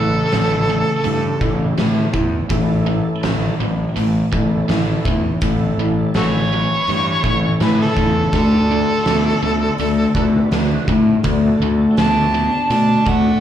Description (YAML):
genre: blues rock power trio and southern rock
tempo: 82 BPM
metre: 4/4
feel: straight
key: A mixolydian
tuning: A4 = 439 Hz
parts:
  - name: warm harmonica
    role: melody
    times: 0.0-1.8, 6.2-13.4 s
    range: F#4 to A5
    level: -20 LUFS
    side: equal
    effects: overdrive, slapback echo
  - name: nasal lead guitar with a parked wah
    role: second line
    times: 0.0-1.8, 6.2-13.4 s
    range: C#3 to D4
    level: -27 LUFS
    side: right 4 dB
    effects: overdrive, slapback echo
  - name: tonewheel organ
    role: sustained chords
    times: 0.0-13.4 s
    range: A3 to B4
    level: -27 LUFS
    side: right 3 dB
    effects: chorus vibrato, slow rotary speaker
  - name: biting overdriven guitar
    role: riff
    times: 0.0-13.4 s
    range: A2 to B3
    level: -20 LUFS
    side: left 1 dB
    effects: slapback echo
  - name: fuzz fingered electric bass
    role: bass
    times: 0.0-13.3 s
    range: A1 to B2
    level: -19 LUFS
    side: equal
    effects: overdrive
  - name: oversized low-tuned drum kit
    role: drums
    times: 0.3-13.2 s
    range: hi-hat, kick drum, snare drum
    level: -23 LUFS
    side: equal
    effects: none
room: little or no reverb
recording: live gig heard through the venue's PA, club reverb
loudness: -14 LUFS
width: side -10 dB against mid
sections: 0.0-13.4 A section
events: none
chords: 0.0 A; 8.3 D